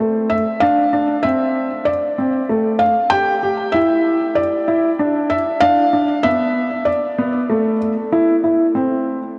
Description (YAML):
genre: electronica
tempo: 96 BPM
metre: 4/4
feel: straight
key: A minor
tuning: A4 = 441 Hz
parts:
  - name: felt-muted upright piano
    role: melody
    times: 0.0-7.8 s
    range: C5 to G5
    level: -20 LUFS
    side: equal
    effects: delay
  - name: dark upright piano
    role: riff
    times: 0.0-9.2 s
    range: A3 to G4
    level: -20 LUFS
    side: equal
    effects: delay
room: wet huge ambient reverb, RT60 6.6 s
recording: none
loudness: -17 LUFS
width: mono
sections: 0.0-8.1 A section; 8.1-9.4 B section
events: build-up 0.0-8.1; drop 8.1-9.4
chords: 0.0 Am; 0.6 Dm7; 3.1 Em; 5.6 Dm69; 8.1 Am (rootless)